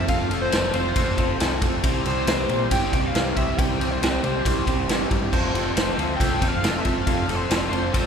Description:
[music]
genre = indie rock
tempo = 138 BPM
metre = 4/4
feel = straight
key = F major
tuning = A4 = 440 Hz
[part]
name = pulse-width lead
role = melody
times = 0.0-8.1 s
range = C5 to G5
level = -28 LUFS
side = left 1 dB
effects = chorus
[part]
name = phased string machine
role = sustained chords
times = 0.0-8.1 s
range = E3 to D4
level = -36 LUFS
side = right 1 dB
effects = none
[part]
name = crunchy overdriven guitar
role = riff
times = 0.0-8.1 s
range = F3 to A4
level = -28 LUFS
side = left 5 dB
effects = phaser
[part]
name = electric guitar through a small old amp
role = riff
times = 0.0-8.1 s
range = F3 to A4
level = -29 LUFS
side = right 6 dB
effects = none
[part]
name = growling picked electric bass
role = bass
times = 0.0-8.1 s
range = F1 to Bb2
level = -29 LUFS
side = equal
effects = overdrive
[part]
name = raw garage drum kit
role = drums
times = 0.1-8.0 s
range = crash cymbal, kick drum, ride cymbal, snare drum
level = -24 LUFS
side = equal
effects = none
[sound]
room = moderate cathedral reverb, RT60 4.8 s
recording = recorded in a church or concert hall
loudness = -20 LUFS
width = side -7 dB against mid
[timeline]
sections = 0.0-8.1 A section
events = none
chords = 0.0 F; 1.8 C; 5.3 F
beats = | 0.09 0.53 0.96 1.40 | 1.83 2.27 2.71 3.14 | 3.58 4.01 4.45 4.88 | 5.32 5.76 6.19 6.63 | 7.06 7.50 7.94

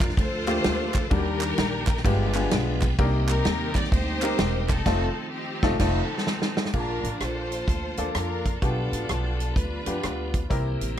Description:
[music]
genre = uptempo gospel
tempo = 128 BPM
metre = 4/4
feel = swing 64% on 8ths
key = Bb major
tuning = A4 = 440 Hz
[part]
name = clear studio string section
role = melody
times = 0.0-10.5 s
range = B3 to D5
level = -31 LUFS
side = left 1 dB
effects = none
[part]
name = tonewheel organ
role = sustained chords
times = 0.0-11.0 s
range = D3 to G4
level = -36 LUFS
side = right 3 dB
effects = slow rotary speaker, overdrive, chorus vibrato
[part]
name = upright bass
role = bass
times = 0.0-11.0 s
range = E1 to F2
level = -28 LUFS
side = equal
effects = none
[part]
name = natural country drum kit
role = drums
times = 0.0-11.0 s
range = crash cymbal, hi-hat, kick drum, ride cymbal, rim click, snare drum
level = -26 LUFS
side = right 1 dB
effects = none
[part]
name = group handclap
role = percussion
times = 0.0-4.8 s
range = none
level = -34 LUFS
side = right 7 dB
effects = none
[part]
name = bright upright piano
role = accompaniment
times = 0.5-11.0 s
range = G2 to A5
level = -29 LUFS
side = left 2 dB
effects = none
[sound]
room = studio ambience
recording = none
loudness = -23 LUFS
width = side -10 dB against mid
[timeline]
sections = 0.0-6.7 A section; 6.7-11.0 B section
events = band accent 4.9-6.7; drum fill 5.8-6.7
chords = 0.0 Bbmaj7; 1.1 Ebmaj7; 2.1 G7b9; 3.0 Cm7; 4.9 F7; 6.7 Bbmaj7; 8.6 G7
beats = 0.18 0.65 | 1.11 1.58 2.05 2.52 | 2.99 3.46 3.92 4.39 | 4.86 5.33 5.80 6.27 | 6.74 7.21 7.68 8.15 | 8.62 9.09 9.56 10.03 | 10.50 10.98

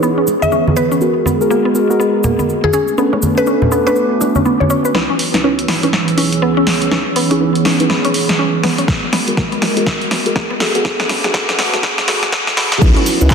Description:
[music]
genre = deep house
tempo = 122 BPM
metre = 4/4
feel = swing 61% on 16ths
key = C# minor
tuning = A4 = 440 Hz
[part]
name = hollow soft pad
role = sustained chords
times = 0.0-13.3 s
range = E3 to C#5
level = -20 LUFS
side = right 2 dB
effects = chorus, vintage 12-bit sampler grit, sidechain pumping
[part]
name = mallet-like synth pluck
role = arpeggios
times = 0.0-13.3 s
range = A#3 to C#5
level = -20 LUFS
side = left 1 dB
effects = chorus, phaser, sidechain pumping, tape echo
[part]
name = deep mellow chord stab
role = stabs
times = 0.0-13.3 s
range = B3 to B4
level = -19 LUFS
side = equal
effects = chorus, vintage 12-bit sampler grit, sidechain pumping, tape echo
[part]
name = cabasa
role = percussion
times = 0.0-4.9, 12.8-13.3 s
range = none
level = -27 LUFS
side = right 2 dB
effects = none
[part]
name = warbly tape-like pad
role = texture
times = 0.0-13.3 s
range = B3 to E6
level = -22 LUFS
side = right 4 dB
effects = chorus, built-in reverb, sidechain pumping
[part]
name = bongos and congas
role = percussion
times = 0.3-4.7 s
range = none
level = -18 LUFS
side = right 1 dB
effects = none
[part]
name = mallet-like synth pluck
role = melody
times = 0.4-4.4 s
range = G#4 to E5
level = -19 LUFS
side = left 3 dB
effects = chorus, analog delay
[part]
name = warm sub bass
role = bass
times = 4.9-13.3 s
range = F#1 to G#2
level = -24 LUFS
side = equal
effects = sidechain pumping, high-pass filter
[part]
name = punchy analog drum machine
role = drums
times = 4.9-13.3 s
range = crash cymbal, handclaps, hi-hat, snare drum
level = -16 LUFS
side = equal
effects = none
[part]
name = electronic kick drum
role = drums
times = 8.9-13.3 s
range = none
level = -15 LUFS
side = equal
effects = none
[sound]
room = wet lush hall reverb, RT60 1.9 s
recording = dense, heavily limited modern master, high-pass filter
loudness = -12 LUFS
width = side -6 dB against mid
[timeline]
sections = 0.0-4.9 A section; 4.9-12.8 B section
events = filter sweep on analog synth pad 0.0-4.9, 4.9-12.8; build-up 4.9-12.8; drum fill 4.9-12.8; filter sweep on synth stab 4.9-12.8; filter sweep 4.9-12.8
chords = 0.0 C#m9; 1.0 G#m9; 2.7 Bm9; 4.9 C#m9; 8.9 G#m9; 10.6 Bm9; 12.8 C#m9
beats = 0.03 0.52 | 1.01 1.50 2.00 2.49 | 2.98 3.47 3.96 4.46 | 4.95 5.44 5.93 6.42 | 6.92 7.41 7.90 8.39 | 8.88 9.37 9.87 10.36 | 10.85 11.34 11.83 12.32 | 12.82 13.31

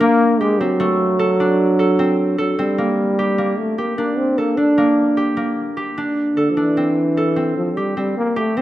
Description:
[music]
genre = contemporary instrumental, contemporary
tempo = 151 BPM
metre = 5/4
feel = straight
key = G dorian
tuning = A4 = 441 Hz
[part]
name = breathy trombone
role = melody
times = 0.0-8.6 s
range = D3 to D4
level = -18 LUFS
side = equal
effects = none
[part]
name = concert harp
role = arpeggios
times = 0.0-8.6 s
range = A3 to Bb4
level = -18 LUFS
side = right 1 dB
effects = none
[sound]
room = moderate recital hall reverb, RT60 1.4 s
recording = none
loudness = -15 LUFS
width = side -14 dB against mid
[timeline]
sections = 0.0-2.8 A section; 2.8-8.6 B section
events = none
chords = 0.0 Gm; 0.8 D7; 2.8 Gmadd9; 6.8 Fmaj9/E (rootless)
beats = 0.01 0.40 | 0.80 1.20 1.59 1.99 2.39 | 2.78 3.18 3.58 3.98 4.38 | 4.77 5.17 5.57 5.97 6.37 | 6.77 7.17 7.57 7.97 8.37

